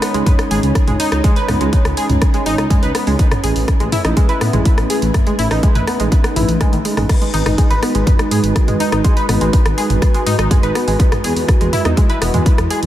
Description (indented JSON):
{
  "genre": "melodic techno",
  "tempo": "123 BPM",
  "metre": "4/4",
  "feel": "straight",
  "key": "G# phrygian",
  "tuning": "A4 = 440 Hz",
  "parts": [
    { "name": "dark analog pad", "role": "sustained chords", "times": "0.0-12.9 s", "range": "G#3 to C#5", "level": "-21 LUFS", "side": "right 1 dB", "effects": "chorus, sidechain pumping" },
    { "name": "tight sequenced synth", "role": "arpeggios", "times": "0.0-12.8 s", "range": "D#3 to B4", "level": "-20 LUFS", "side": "equal", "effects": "chorus, sidechain pumping, diffuse ambient delay" },
    { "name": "punchy analog drum machine", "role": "drums", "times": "0.0-12.9 s", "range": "crash cymbal, hi-hat, rim click, toms", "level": "-22 LUFS", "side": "equal", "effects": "overdrive, sidechain pumping on hats, sidechain pumping on toms, sidechain pumping on cymbals" },
    { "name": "swelling detuned saw bass", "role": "bass", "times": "0.1-12.9 s", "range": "E1 to A2", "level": "-18 LUFS", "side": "equal", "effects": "sidechain pumping" },
    { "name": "electronic kick drum", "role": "drums", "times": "0.3-12.6 s", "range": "none", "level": "-13 LUFS", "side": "equal", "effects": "none" }
  ],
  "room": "light reverb",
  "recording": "none",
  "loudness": "-12 LUFS",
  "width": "side -12 dB against mid",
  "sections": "0.0-12.9 A section",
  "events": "none",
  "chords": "0.0 C#sus2; 3.2 Aadd9; 7.1 G#m7; 11.0 Eadd9"
}